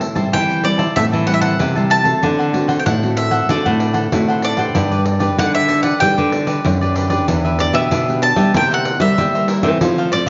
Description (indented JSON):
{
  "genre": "samba and choro",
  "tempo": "95 BPM",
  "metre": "4/4",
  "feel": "straight",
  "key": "G major",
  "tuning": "A4 = 440 Hz",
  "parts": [
    { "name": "bowl-back mandolin", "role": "melody", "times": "0.0-10.3 s", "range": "D5 to A5", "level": "-21 LUFS", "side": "equal", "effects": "none" },
    { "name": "cavaquinho", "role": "accompaniment", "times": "0.0-10.3 s", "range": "D4 to A5", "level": "-26 LUFS", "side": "equal", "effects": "none" },
    { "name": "nylon-string guitar", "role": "accompaniment", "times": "0.0-10.3 s", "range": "A2 to B4", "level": "-25 LUFS", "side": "equal", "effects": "none" },
    { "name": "nylon-string guitar", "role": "bass", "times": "0.0-10.3 s", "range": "E2 to A3", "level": "-21 LUFS", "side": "equal", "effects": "none" },
    { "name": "pandeiro", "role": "percussion", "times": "0.0-10.3 s", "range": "none", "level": "-25 LUFS", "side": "equal", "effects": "none" }
  ],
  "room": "wet large studio reverb, RT60 1.3 s",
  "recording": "nothing above 7.5 kHz",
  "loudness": "-16 LUFS",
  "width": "mono",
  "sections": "0.0-7.3 A section; 7.3-10.3 B section",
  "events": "none",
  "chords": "0.0 Am7; 2.2 D7; 4.8 G; 7.3 Em7; 8.5 C7"
}